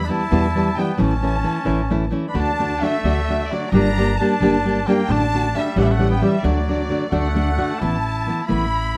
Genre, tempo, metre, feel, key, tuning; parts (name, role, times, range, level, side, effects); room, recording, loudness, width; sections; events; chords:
mexican folk, mariachi; 88 BPM (dotted quarters); 6/8; straight; D major; A4 = 440 Hz
rich studio violin section; melody; 0.0-9.0 s; D5 to B5; -28 LUFS; equal
warm trumpet; second line; 0.0-9.0 s; F#3 to E4; -29 LUFS; equal
upright bass; bass; 0.0-8.9 s; G1 to E2; -25 LUFS; equal
nylon-string guitar; accompaniment; 0.1-9.0 s; E2 to G4; -23 LUFS; equal
light reverb; close, detailed microphones; -20 LUFS; mono
0.0-7.8 A section; 7.8-9.0 B section
0.0 Em; 1.0 A; 2.4 D; 3.7 Gm; 5.1 D/A; 5.8 A7; 6.4 D; 7.8 Asus2